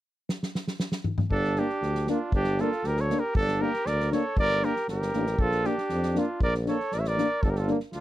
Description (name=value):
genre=balkan folk, Balkan brass band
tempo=118 BPM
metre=2/4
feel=straight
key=G minor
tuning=A4 = 440 Hz
part: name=unplugged drum kit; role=percussion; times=0.3-8.0 s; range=kick drum, snare drum, toms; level=-30 LUFS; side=equal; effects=none
part: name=mellow trumpet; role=melody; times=1.3-8.0 s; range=F4 to E5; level=-28 LUFS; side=equal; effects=none
part: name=warm trumpet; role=second line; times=1.3-8.0 s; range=D4 to C#5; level=-34 LUFS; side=right 7 dB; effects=none
part: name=warm tuba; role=bass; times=1.3-8.0 s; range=G1 to F2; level=-29 LUFS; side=equal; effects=none
part: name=clear trombone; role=accompaniment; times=1.6-7.8 s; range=Bb3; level=-32 LUFS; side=right 6 dB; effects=none
part: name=warm euphonium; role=accompaniment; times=1.6-7.8 s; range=D4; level=-30 LUFS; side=left 6 dB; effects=none
room=little or no reverb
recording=dry, close 1970s-style studio recording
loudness=-24 LUFS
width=side -14 dB against mid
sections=0.3-1.3 A section; 1.3-8.0 B section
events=drum fill 0.3-1.3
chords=0.3 N.C.; 1.3 Gm; 5.4 Bb; 7.4 Gm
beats=| 0.29 0.80 | 1.31 1.82 | 2.33 2.84 | 3.35 3.86 | 4.37 4.88 | 5.39 5.90 | 6.41 6.92 | 7.43 7.94